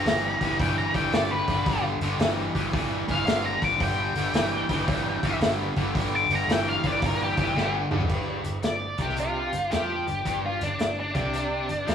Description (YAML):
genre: blues rock power trio and southern rock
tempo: 112 BPM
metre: 4/4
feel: swing 66% on 8ths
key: G mixolydian, G major from 8.1 s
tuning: A4 = 439 Hz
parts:
  - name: octave-fuzz lead guitar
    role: melody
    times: 0.0-11.9 s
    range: D4 to D6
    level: -28 LUFS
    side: left 1 dB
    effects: distortion
  - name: percussive tonewheel organ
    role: sustained chords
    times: 0.0-11.9 s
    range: D4 to F5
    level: -38 LUFS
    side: right 3 dB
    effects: overdrive, chorus vibrato, slow rotary speaker
  - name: overdriven semi-hollow guitar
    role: riff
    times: 0.0-11.9 s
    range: G2 to F3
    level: -28 LUFS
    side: equal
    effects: none
  - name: vintage muted fingered electric bass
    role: bass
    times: 0.1-11.9 s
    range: G1 to F2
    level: -32 LUFS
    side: equal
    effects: none
  - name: vintage drum kit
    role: drums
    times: 0.1-11.9 s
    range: crash cymbal, hi-hat, kick drum, snare drum, toms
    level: -28 LUFS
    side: equal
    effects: none
room: moderate stone room reverb, RT60 1.4 s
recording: rough rehearsal-room recording, small room ambience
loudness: -23 LUFS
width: side -8 dB against mid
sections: 0.0-8.1 A section; 8.1-11.9 B section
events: lead electric guitar solo 0.0-8.1; drum fill 7.6-8.1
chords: 0.0 G